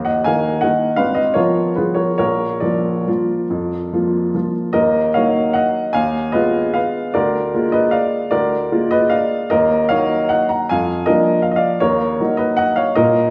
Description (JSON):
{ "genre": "classical, piano waltz", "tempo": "134-167 BPM", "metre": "3/4", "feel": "rubato", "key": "Eb minor", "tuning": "A4 = 441 Hz", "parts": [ { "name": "clear upright piano", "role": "solo", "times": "0.0-13.3 s", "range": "Ab1 to Bb5", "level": "-17 LUFS", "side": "equal", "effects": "none" } ], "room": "wet recital hall reverb, RT60 1.6 s", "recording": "heard from further back in the room, nothing above 10.3 kHz", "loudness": "-17 LUFS", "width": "mono", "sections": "0.0-4.7 A section; 4.7-13.3 B section", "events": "none", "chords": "0.0 Ebm; 1.0 Fdim/Ab; 2.2 Bb; 4.7 Ebm; 6.0 Fm7b5/Eb; 7.1 Bb7/D; 9.5 Ebm; 10.7 Bb7/F; 11.8 Ebm", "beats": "0.25 0.63 | 1.00 1.38 1.78 | 2.20 2.63 3.08 | 3.50 3.92 4.34 | 4.75 5.15 5.56 | 5.95 6.34 6.75 | 7.15 7.53 7.93 | 8.32 8.71 9.12 | 9.51 9.90 10.30 | 10.69 11.06 11.44 | 11.82 12.20 12.59 | 12.96" }